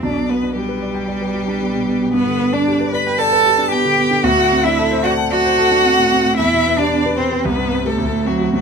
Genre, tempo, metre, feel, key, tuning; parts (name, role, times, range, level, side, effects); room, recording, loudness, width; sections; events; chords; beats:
quick classical-period movement for piano trio; 113 BPM; 4/4; straight; G major; A4 = 441 Hz
warm violin; melody; 0.0-8.6 s; F#4 to B5; -21 LUFS; left 6 dB
rich cello; second line; 0.0-8.6 s; F#3 to B4; -17 LUFS; right 3 dB
warm concert grand piano; accompaniment; 0.0-8.6 s; B1 to A5; -19 LUFS; equal
light reverb; close, detailed microphones; -14 LUFS; side -6 dB against mid
0.0-8.6 A section
0.0 G/B; 2.1 G; 4.2 D7; 6.4 Em; 7.5 Am9/C; 8.0 D7
| 0.03 0.56 1.08 1.61 | 2.14 2.67 3.19 3.72 | 4.25 4.78 5.32 5.85 | 6.39 6.92 7.45 7.99 | 8.55